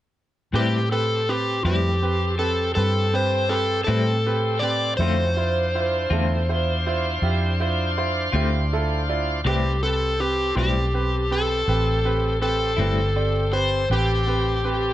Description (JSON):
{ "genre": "blues", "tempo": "54 BPM (dotted quarters)", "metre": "12/8", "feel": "straight", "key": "A minor", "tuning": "A4 = 441 Hz", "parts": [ { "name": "bright upright piano", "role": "accompaniment", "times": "0.5-14.9 s", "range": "C4 to D5", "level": "-28 LUFS", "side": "right 5 dB", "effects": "none" }, { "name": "clean electric guitar", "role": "accompaniment", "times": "0.5-13.0 s", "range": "A2 to F4", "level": "-28 LUFS", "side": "left 5 dB", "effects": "tremolo" }, { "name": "bright tonewheel organ", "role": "sustained chords", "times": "0.5-14.9 s", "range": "C4 to C5", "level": "-31 LUFS", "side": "equal", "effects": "slow rotary speaker" }, { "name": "vintage muted fingered electric bass", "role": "bass", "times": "0.5-14.9 s", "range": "G1 to A2", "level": "-24 LUFS", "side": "equal", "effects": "none" }, { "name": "overdriven slide guitar", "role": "melody", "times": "0.6-14.9 s", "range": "G4 to D5", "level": "-24 LUFS", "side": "left 1 dB", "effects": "none" } ], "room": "light reverb", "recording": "none", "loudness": "-20 LUFS", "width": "side -13 dB against mid", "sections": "0.5-14.9 A section", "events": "none", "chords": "0.5 Am7; 5.0 Dm7; 9.4 Am7", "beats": "| 0.54 1.66 2.77 3.88 | 5.00 6.11 7.22 8.33 | 9.45 10.56 11.67 12.78 | 13.89" }